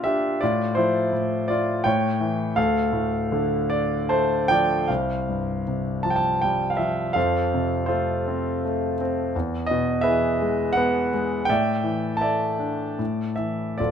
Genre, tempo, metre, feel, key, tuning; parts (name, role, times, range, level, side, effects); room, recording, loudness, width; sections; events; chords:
classical, lyrical solo piano; 74-85 BPM; 3/4; rubato; D minor; A4 = 440 Hz
warm concert grand piano; solo; 0.0-13.9 s; D1 to A5; -21 LUFS; equal
light reverb; close, detailed microphones; -21 LUFS; side -8 dB against mid
0.0-4.9 A section; 4.9-13.8 B section
grand piano fill 3.7-4.9
0.4 Dm9/A; 1.9 A7; 2.6 Dm; 4.9 Csus4; 7.2 F; 9.3 E; 11.5 Asus4